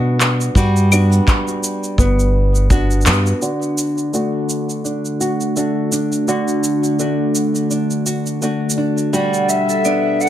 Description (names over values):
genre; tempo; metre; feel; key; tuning
folktronica; 84 BPM; 4/4; swing 56% on 16ths; D major; A4 = 440 Hz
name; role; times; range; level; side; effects
nylon-string guitar; arpeggios; 0.0-10.3 s; D3 to F#4; -19 LUFS; equal; low-pass filter, tape echo, plate reverb
fingered electric bass; bass; 0.0-3.3 s; G1 to B2; -14 LUFS; equal; none
electronic handclaps, shaker and claves; drums; 0.2-10.3 s; none; -20 LUFS; equal; none
kick drum; drums; 0.6-2.9 s; none; -15 LUFS; equal; none
warbly tape-like pad; sustained chords; 3.4-10.3 s; B2 to F#4; -22 LUFS; equal; chorus, built-in reverb
breathy mellow jazz flute; melody; 9.1-10.3 s; D5 to F#5; -18 LUFS; left 2 dB; none
vibraphone with medium hard mallets; second line; 9.1-10.3 s; A4 to F#5; -21 LUFS; right 2 dB; plate reverb
room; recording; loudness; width
moderate studio reverb, RT60 0.6 s; none; -15 LUFS; side -11 dB against mid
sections
0.0-3.4 A section; 3.4-10.3 B section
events
band accent 3.1-3.4; filter sweep on nylon-string guitar 3.4-10.3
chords
0.0 Gmaj7; 3.4 D; 9.1 Gmaj7